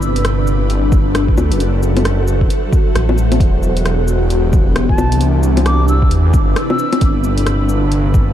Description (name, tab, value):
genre	future garage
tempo	133 BPM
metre	4/4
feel	swing 61% on 16ths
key	unclear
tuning	A4 = 440 Hz
part	ethereal airy pad	sustained chords	0.0-8.3 s	C3 to E5	-19 LUFS	equal	ensemble chorus, built-in reverb, phaser, sidechain pumping
part	swelling detuned saw bass	bass	0.0-8.3 s	E1 to E2	-15 LUFS	equal	tube saturation, sidechain pumping
part	deep house drum kit	drums	0.0-8.3 s	bongos, cabasa, hi-hat, rim click	-23 LUFS	left 2 dB	small room ambience
part	electronic kick drum	drums	0.9-8.3 s	none	-14 LUFS	equal	small room ambience
part	mellow jazz flute	melody	4.9-7.1 s	A5 to E6	-24 LUFS	left 1 dB	vintage 12-bit sampler grit, diffuse ambient delay
room	light reverb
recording	none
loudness	-12 LUFS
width	side -11 dB against mid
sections	0.0-8.3 A section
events	none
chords	0.0 Gmaj7; 1.6 F#m7b5; 3.4 Em7; 5.2 Cmaj7; 7.0 Gmaj7